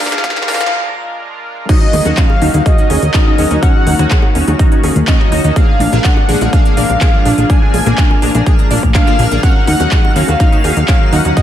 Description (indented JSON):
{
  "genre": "progressive house",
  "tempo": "124 BPM",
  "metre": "4/4",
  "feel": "straight",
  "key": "Eb minor",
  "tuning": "A4 = 439 Hz",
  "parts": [
    { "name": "wide unison lead", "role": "melody", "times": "0.0-11.4 s", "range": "Eb5 to Ab5", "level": "-20 LUFS", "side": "equal", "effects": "sidechain pumping, tape echo" },
    { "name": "lush unison pad", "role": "sustained chords", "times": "0.0-11.4 s", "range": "D3 to Bb4", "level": "-22 LUFS", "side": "equal", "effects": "chorus, sidechain pumping" },
    { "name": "wide unison pluck", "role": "arpeggios", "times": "0.0-11.4 s", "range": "Db4 to D5", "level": "-21 LUFS", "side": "equal", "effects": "sidechain pumping, ping-pong delay" },
    { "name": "big-room dance drum kit", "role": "drums", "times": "0.0-11.4 s", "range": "crash cymbal, handclaps, hi-hat, snare drum", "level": "-21 LUFS", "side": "equal", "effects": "none" },
    { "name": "backwards swelling texture", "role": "texture", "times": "0.0-11.4 s", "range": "Bb5 to F6", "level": "-29 LUFS", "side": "left 1 dB", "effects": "none" },
    { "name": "chorused polysynth", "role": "stabs", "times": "0.1-11.4 s", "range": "Bb3 to Bb4", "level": "-20 LUFS", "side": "left 1 dB", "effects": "phaser, sidechain pumping, ping-pong delay" },
    { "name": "electronic kick drum", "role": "drums", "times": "0.2-11.4 s", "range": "none", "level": "-11 LUFS", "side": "equal", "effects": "none" },
    { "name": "soft supersaw", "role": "second line", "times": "1.7-11.4 s", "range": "Eb5 to Ab5", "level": "-24 LUFS", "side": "equal", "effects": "sidechain pumping, ping-pong delay" },
    { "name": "plucky analog bass", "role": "bass", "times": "1.9-11.3 s", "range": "Bb1 to Eb2", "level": "-14 LUFS", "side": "equal", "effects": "sidechain pumping" },
    { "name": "congas and bongos", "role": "percussion", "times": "1.9-10.4 s", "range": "none", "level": "-24 LUFS", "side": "left 7 dB", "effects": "sidechain pumping on perc" }
  ],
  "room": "light reverb",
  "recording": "high-pass filter",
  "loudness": "-9 LUFS",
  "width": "side -11 dB against mid",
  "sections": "0.0-1.7 A section; 1.7-11.4 B section",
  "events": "build-up 0.0-1.7; drum fill 0.0-0.7; filter sweep 0.0-1.7; break 0.7-1.7; drop 1.7-11.4",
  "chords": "0.0 Bb7; 1.7 Ebm7; 5.6 Bb7; 9.4 Ebm7"
}